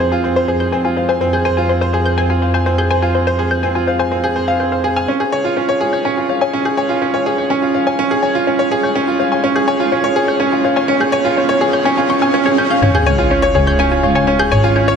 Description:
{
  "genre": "piano and strings electronica",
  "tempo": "124 BPM",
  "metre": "4/4",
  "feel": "straight",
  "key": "unclear",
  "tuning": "A4 = 440 Hz",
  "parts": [
    { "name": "analog pluck", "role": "arpeggios", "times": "0.0-14.9 s", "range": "C5 to G6", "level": "-20 LUFS", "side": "left 5 dB", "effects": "chorus, tape echo" },
    { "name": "bright upright piano", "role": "riff", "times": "0.0-15.0 s", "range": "C4 to Db6", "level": "-15 LUFS", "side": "right 1 dB", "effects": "tape echo" },
    { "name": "dark symphonic double bass section", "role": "bass", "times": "0.0-14.7 s", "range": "Ab1 to F2", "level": "-20 LUFS", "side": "equal", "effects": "high-pass filter" },
    { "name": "riser, swell and sub drop", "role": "sound effects", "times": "6.7-14.8 s", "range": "none", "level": "-23 LUFS", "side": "right 1 dB", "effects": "none" }
  ],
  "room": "moderate huge ambient reverb, RT60 8.8 s",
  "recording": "none",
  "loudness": "-13 LUFS",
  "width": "side -6 dB against mid",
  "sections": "0.0-5.1 A section; 5.1-12.8 B section; 12.8-15.0 C section",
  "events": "build-up 5.1-12.8; filter sweep on synth arpeggio sound 5.1-12.8; riser 6.7-12.8; swell 11.9-12.8; drop 12.8-15.0; impact 12.8-14.8",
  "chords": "0.0 Fm; 5.1 Db"
}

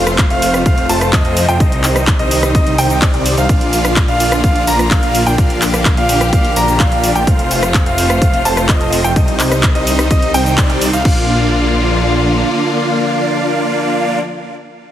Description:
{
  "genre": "EDM, festival progressive house",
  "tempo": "127 BPM",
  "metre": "4/4",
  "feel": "straight",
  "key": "Bb major",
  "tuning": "A4 = 440 Hz",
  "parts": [
    { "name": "clear symphonic string section", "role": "sustained chords", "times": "0.0-14.2 s", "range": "C3 to G4", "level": "-21 LUFS", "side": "left 2 dB", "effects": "sidechain pumping" },
    { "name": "warm grand piano", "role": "arpeggios", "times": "0.0-14.2 s", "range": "D5 to Bb5", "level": "-19 LUFS", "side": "equal", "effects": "sidechain pumping, digital delay" },
    { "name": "supersaw chords", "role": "riff", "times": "0.0-14.2 s", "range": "G3 to Bb5", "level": "-17 LUFS", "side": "right 1 dB", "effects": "phaser, sidechain pumping, digital delay" },
    { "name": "detuned saw bass", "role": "bass", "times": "0.0-12.4 s", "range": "F1 to F2", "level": "-18 LUFS", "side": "equal", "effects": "sidechain pumping" },
    { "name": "big-room dance drum kit", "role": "drums", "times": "0.1-11.1 s", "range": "crash cymbal, handclaps, hi-hat, rim click, shaker", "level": "-19 LUFS", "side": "equal", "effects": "overdrive, studio ambience" },
    { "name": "electronic kick drum", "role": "drums", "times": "0.2-11.1 s", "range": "none", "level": "-14 LUFS", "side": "equal", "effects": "studio ambience" }
  ],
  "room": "light reverb",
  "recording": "heavily compressed radio sound, multiband compression",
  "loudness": "-11 LUFS",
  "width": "side -11 dB against mid",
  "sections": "0.0-11.1 A section; 11.1-14.8 B section",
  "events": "drop 0.0-11.1; band accent 10.6",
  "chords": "0.0 F; 1.6 Cm; 3.5 Bb; 7.3 F; 9.2 Cm; 11.1 Bb"
}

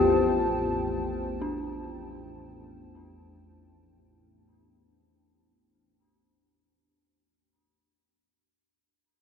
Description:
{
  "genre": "dark ambient drone",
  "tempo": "free time",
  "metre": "none",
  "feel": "none",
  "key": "unclear",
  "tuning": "A4 = 440 Hz",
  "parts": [
    { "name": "dark analog pad", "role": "sustained chords", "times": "0.0-3.9 s", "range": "F4 to A5", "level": "-30 LUFS", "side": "equal", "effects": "chorus" },
    { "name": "dark detuned synth bell", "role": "arpeggios", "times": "0.0-7.5 s", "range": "D4 to A4", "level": "-29 LUFS", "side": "left 2 dB", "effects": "chorus" },
    { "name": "organ-like drone", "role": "drone", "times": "0.0-4.0 s", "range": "A1 to E2", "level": "-32 LUFS", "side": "left 2 dB", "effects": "ensemble chorus, built-in reverb" }
  ],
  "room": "wet huge ambient reverb, RT60 6.9 s",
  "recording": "cassette tape",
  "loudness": "-26 LUFS",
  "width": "side -7 dB against mid",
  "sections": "0.0-3.9 A section",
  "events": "fade-out 0.0-3.9",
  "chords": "0.0 F"
}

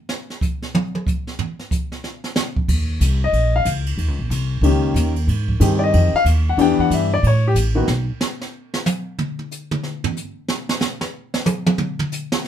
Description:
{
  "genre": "jazz piano trio",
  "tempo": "185 BPM",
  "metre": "4/4",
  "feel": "swing 63% on 8ths",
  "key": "unclear",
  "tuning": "A4 = 440 Hz",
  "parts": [
    { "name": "jazz brush drum kit", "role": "drums", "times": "0.1-12.5 s", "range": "crash cymbal, hi-hat, kick drum, ride cymbal, snare drum, toms", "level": "-23 LUFS", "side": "right 2 dB", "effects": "none" },
    { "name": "upright bass", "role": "bass", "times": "2.7-8.1 s", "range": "A1 to A2", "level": "-18 LUFS", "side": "equal", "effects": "none" },
    { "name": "warm baby grand piano", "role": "melody", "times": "3.2-7.9 s", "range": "Eb3 to G5", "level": "-18 LUFS", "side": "left 3 dB", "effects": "none" }
  ],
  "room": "moderate studio ambience, RT60 0.5 s",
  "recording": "minimal, uncompressed stereo recording",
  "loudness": "-18 LUFS",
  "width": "side -10 dB against mid",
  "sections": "0.0-2.7 A section; 2.7-12.5 A section",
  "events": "grand piano solo 0.0-12.5; drum solo 0.0-2.7, 7.9-12.5",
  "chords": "0.0 N.C.; 2.7 Eb5; 5.3 Abmaj7; 6.6 Em7; 7.2 N.C."
}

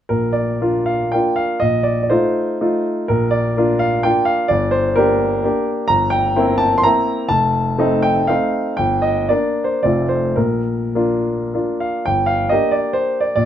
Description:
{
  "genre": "classical, romantic triple-time dance for piano with dotted rhythms",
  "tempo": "98-145 BPM",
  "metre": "3/4",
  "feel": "rubato",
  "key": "Bb major",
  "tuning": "A4 = 441 Hz",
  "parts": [
    { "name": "clear grand piano", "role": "solo", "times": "0.1-13.5 s", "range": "F1 to C6", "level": "-15 LUFS", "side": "equal", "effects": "none" }
  ],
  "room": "light reverb",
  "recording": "none",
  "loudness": "-15 LUFS",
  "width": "side -10 dB against mid",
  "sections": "0.1-12.1 A section; 12.1-13.5 B section",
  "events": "none",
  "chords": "0.1 Bb; 1.6 F7/Bb; 3.1 Bb; 4.5 Gm; 5.9 C7/G; 7.3 F7; 8.8 Gm; 9.8 F; 10.4 Bb; 12.1 Gm"
}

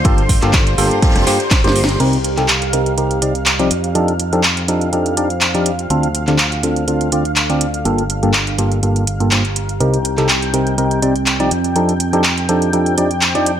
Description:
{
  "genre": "piano house",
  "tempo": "123 BPM",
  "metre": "4/4",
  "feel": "swing 54% on 16ths",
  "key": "C dorian",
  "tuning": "A4 = 444 Hz",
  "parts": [
    { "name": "analog string pad", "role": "sustained chords", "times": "0.0-13.6 s", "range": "C5 to G6", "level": "-26 LUFS", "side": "equal", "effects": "ensemble chorus, vintage 12-bit sampler grit, sidechain pumping" },
    { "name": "percussive organ stab", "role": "riff", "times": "0.0-13.5 s", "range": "G2 to D5", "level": "-17 LUFS", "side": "equal", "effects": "chorus, cassette tape, sidechain pumping, tape echo" },
    { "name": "modern bright fingered electric bass", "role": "bass", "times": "0.0-13.6 s", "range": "F1 to F2", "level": "-21 LUFS", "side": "equal", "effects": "sidechain pumping, low-pass filter" },
    { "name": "electronic kick drum", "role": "drums", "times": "0.0-1.6 s", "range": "none", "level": "-14 LUFS", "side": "equal", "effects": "none" },
    { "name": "house drum kit", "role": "drums", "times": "0.0-13.6 s", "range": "crash cymbal, handclaps, hi-hat, rim click, snare drum", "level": "-18 LUFS", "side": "right 1 dB", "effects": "none" },
    { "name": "vintage brush drum kit", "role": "drums", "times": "0.0-1.9 s", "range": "ride cymbal, snare drum", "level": "-28 LUFS", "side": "left 2 dB", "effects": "sidechain pumping on cymbals, high-pass filter on cymbals, sidechain pumping on hats, high-pass filter on hats, high-pass filter on snare, high-pass filter on room" },
    { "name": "deep dark ambient pad", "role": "texture", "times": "0.0-13.6 s", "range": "C4 to Bb5", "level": "-25 LUFS", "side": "right 2 dB", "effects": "chorus, built-in reverb, sidechain pumping" }
  ],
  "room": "light reverb, small room reverb",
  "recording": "none",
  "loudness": "-13 LUFS",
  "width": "side -9 dB against mid",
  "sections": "0.0-2.0 A section; 2.0-13.6 B section",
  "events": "drum fill 1.5-2.0; band accent 1.8; filter sweep on synth stab 2.0-13.6",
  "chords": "0.0 Gm9; 2.0 Cm7; 3.7 F13; 5.9 Dm7; 7.9 Gm9; 9.8 Cm7; 11.5 F13"
}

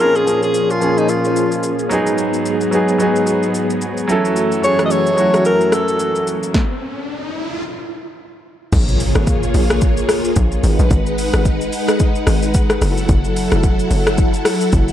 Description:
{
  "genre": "amapiano",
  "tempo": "110 BPM",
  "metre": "4/4",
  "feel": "swing 58% on 16ths",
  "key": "Bb minor",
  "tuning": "A4 = 440 Hz",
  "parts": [
    { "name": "warm alto saxophone", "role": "melody", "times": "0.0-6.3 s", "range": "Eb4 to Eb5", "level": "-17 LUFS", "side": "left 1 dB", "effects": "tape echo" },
    { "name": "clear grand piano", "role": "accompaniment", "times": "0.0-6.6 s", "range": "F3 to A4", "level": "-18 LUFS", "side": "right 1 dB", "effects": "tape echo" },
    { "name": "string machine, violas", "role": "sustained chords", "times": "0.0-14.9 s", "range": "Gb2 to Gb5", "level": "-20 LUFS", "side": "left 1 dB", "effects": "ensemble chorus, sidechain pumping" },
    { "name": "deep house drum kit", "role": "drums", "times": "0.0-14.9 s", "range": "crash cymbal, hi-hat, kick drum, rim click, shaker, snare drum", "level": "-19 LUFS", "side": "equal", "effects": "overdrive, vintage 12-bit sampler grit" },
    { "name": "riser and impact", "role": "sound effects", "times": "6.2-10.9 s", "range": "none", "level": "-26 LUFS", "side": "equal", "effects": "none" },
    { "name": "tight log drum bass", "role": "bass", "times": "8.7-14.9 s", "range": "F1 to Bb1", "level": "-17 LUFS", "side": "equal", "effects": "none" }
  ],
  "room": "moderate spring reverb, RT60 2.0 s",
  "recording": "echo-heavy mix",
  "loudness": "-14 LUFS",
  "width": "side -11 dB against mid",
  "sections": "0.0-8.7 A section; 8.7-14.9 B section",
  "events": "riser 6.2-8.7; stop 6.5-8.7; drop 8.7-14.9; impact 8.7-10.9",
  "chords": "0.0 Bbm7; 1.9 Abm7; 4.1 Gbm7; 6.5 N.C.; 8.7 Bbm7; 10.6 Abm7; 12.8 Gbm7"
}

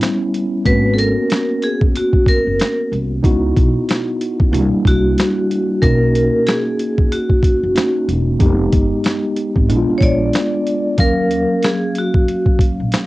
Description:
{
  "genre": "hip hop, jazz-hop",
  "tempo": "93 BPM",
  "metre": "4/4",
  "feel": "swing 61% on 16ths",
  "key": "Eb minor",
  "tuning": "A4 = 439 Hz",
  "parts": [
    { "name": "mellow tine electric piano", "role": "accompaniment", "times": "0.0-13.1 s", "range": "Gb3 to F5", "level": "-18 LUFS", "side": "equal", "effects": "medium stereo tremolo, cassette tape" },
    { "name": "boom bap sampler-style drum kit", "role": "drums", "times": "0.0-13.1 s", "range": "hi-hat, kick drum, snare drum", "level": "-16 LUFS", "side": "equal", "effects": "vintage 12-bit sampler grit, cassette tape" },
    { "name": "vibraphone with hard mallets", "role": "melody", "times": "0.7-12.6 s", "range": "Gb4 to D5", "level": "-18 LUFS", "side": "equal", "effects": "cassette tape" },
    { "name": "upright bass", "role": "bass", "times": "0.7-12.9 s", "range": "Fb1 to Eb2", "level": "-19 LUFS", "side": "equal", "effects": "none" }
  ],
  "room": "moderate booth ambience, RT60 0.2 s",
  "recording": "home recording on cassette",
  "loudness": "-13 LUFS",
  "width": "side -18 dB against mid",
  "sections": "0.0-13.1 A section",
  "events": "none",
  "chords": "0.0 A9 (rootless); 0.7 Abm11; 3.2 Dbm11; 4.5 C9; 5.8 Bmaj9; 8.4 Fm7b5; 9.7 Bb7b9; 11.0 Ebm9"
}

